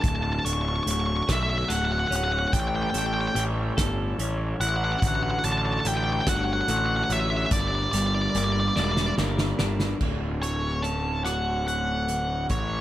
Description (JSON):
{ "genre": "post-rock", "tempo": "48 BPM (dotted quarters)", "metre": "6/8", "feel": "straight", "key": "D major", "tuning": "A4 = 440 Hz", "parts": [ { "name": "nasal lead guitar with a parked wah", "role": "melody", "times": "0.0-12.8 s", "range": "C#5 to C#6", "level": "-27 LUFS", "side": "equal", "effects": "overdrive, analog delay" }, { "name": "hand-pumped harmonium", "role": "sustained chords", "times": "0.0-12.8 s", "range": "C#3 to C#5", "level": "-38 LUFS", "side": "right 1 dB", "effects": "none" }, { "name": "twelve-string electric guitar", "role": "arpeggios", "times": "0.0-12.8 s", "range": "D2 to A4", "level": "-31 LUFS", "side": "left 2 dB", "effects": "analog delay" }, { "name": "fuzz picked electric bass", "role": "bass", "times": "0.0-12.8 s", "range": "D1 to B1", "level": "-27 LUFS", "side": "equal", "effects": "overdrive" }, { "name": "loose indie drum kit", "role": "drums", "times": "0.0-12.7 s", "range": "crash cymbal, hi-hat, kick drum, rim click, snare drum", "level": "-29 LUFS", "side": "equal", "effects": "none" } ], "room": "light reverb, small room ambience", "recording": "none", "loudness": "-23 LUFS", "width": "side -13 dB against mid", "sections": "0.0-10.0 A section; 10.0-12.8 B section", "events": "drum fill 8.8-10.0", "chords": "0.0 Dmaj7; 2.5 A7; 5.0 Dmaj7/A; 7.5 Gm6; 10.0 Dmaj7" }